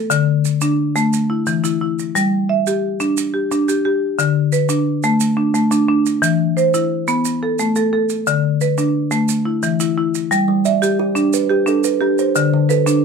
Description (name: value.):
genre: southern african traditional, mbira-style interlocking cycle.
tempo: 118 BPM (dotted quarters).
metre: 12/8.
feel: straight.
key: G major.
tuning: A4 = 442 Hz.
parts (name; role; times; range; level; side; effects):
marimba with hard mallets; arpeggios; 0.0-13.0 s; D3 to E5; -15 LUFS; left 1 dB; none.
maracas; percussion; 0.1-13.0 s; none; -27 LUFS; right 10 dB; none.
kalimba; arpeggios; 10.5-13.0 s; D3 to D5; -19 LUFS; right 8 dB; none.
room: wet studio reverb, RT60 0.6 s.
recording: none.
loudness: -15 LUFS.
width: side -5 dB against mid.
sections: 0.0-10.3 A section; 10.3-13.0 A section.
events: none.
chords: 0.1 D5; 1.1 N.C.; 2.1 G5; 4.2 D5; 6.2 E5; 7.2 N.C.; 8.3 D5; 9.3 N.C.; 10.3 G; 12.4 D5.